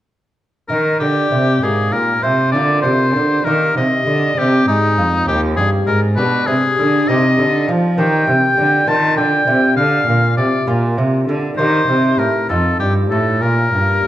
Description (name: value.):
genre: classical, baroque-style sonata movement with continuo.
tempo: 66 BPM (dotted quarters).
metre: 6/8.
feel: rubato.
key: Eb major, Bb major from 8.0 s.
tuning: A4 = 440 Hz.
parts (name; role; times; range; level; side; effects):
clear oboe; melody; 0.7-14.1 s; Eb4 to A5; -16 LUFS; left 2 dB; none.
lute; accompaniment; 0.7-14.0 s; Eb2 to Bb4; -19 LUFS; equal; none.
warm cello; bass; 0.7-14.1 s; Eb2 to F3; -17 LUFS; right 1 dB; none.
room: moderate recital hall reverb, RT60 1.6 s.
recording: none.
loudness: -13 LUFS.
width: side -13 dB against mid.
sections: 0.7-14.1 A section.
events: none.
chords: 0.7 Eb; 2.5 Bb; 3.5 Eb; 4.4 Cm; 6.2 G/B; 7.1 Cm; 8.9 F5; 9.8 Bb; 11.6 Eb; 12.5 F7; 13.4 N.C..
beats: | 0.70 1.62 | 2.53 3.46 | 4.38 5.28 | 6.17 7.09 | 7.99 8.88 | 9.77 10.67 | 11.57 12.48 | 13.41.